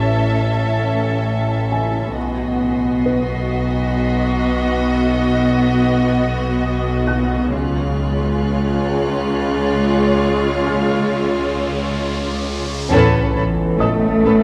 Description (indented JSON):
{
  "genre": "cinematic, suspense film score",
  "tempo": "67 BPM",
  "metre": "3/4",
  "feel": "straight",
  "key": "unclear",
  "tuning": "A4 = 445 Hz",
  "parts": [
    { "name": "rich studio violin section", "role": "melody", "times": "0.0-14.3 s", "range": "B4 to E5", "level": "-28 LUFS", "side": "equal", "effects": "none" },
    { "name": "rich studio violin section", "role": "second line", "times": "0.0-14.3 s", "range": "E#4 to A4", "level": "-27 LUFS", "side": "equal", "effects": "none" },
    { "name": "rich studio viola section", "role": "accompaniment", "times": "0.0-14.3 s", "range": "G#3 to C#4", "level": "-27 LUFS", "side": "equal", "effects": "none" },
    { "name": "bright studio double bass section", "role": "bass", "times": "0.0-14.3 s", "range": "A1 to C#2", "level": "-24 LUFS", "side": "equal", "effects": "none" },
    { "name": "warm studio cello section", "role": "bass", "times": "0.0-14.4 s", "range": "A2 to A3", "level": "-23 LUFS", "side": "equal", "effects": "none" },
    { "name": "overtone-sweeping drone", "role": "drone", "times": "0.0-14.4 s", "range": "A1 to C#2", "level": "-29 LUFS", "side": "equal", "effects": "chorus, built-in reverb" },
    { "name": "felt-muted upright piano", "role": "texture", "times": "0.0-14.4 s", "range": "B4 to F#6", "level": "-31 LUFS", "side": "equal", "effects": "none" },
    { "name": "rich studio violin section", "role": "texture", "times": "0.0-12.4 s", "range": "C#6 to B#6", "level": "-39 LUFS", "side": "equal", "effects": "none" },
    { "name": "riser and sub drop", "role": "sound effects", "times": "10.3-14.4 s", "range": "none", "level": "-31 LUFS", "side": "equal", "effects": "none" },
    { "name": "mellow French horn section", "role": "sustained chords", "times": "12.9-14.4 s", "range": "C#4 to A4", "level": "-23 LUFS", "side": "equal", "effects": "none" },
    { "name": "warm trombone section", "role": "sustained chords", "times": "12.9-14.4 s", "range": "E3 to B3", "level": "-24 LUFS", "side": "equal", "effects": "none" }
  ],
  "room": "moderate scoring stage reverb, RT60 2.0 s",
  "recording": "dark, warm production",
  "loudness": "-18 LUFS",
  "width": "mono",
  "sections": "0.0-12.9 A section; 12.9-14.4 B section",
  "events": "riser 10.3-12.9; band accent 12.9-13.8; impact 12.9-14.4",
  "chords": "0.0 A; 2.2 B; 7.5 C#; 12.9 Aadd9",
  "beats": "0.36 1.26 | 2.16 3.05 3.95 | 4.84 5.74 6.63 | 7.53 8.43 9.32 | 10.22 11.11 12.01 | 12.90 13.80"
}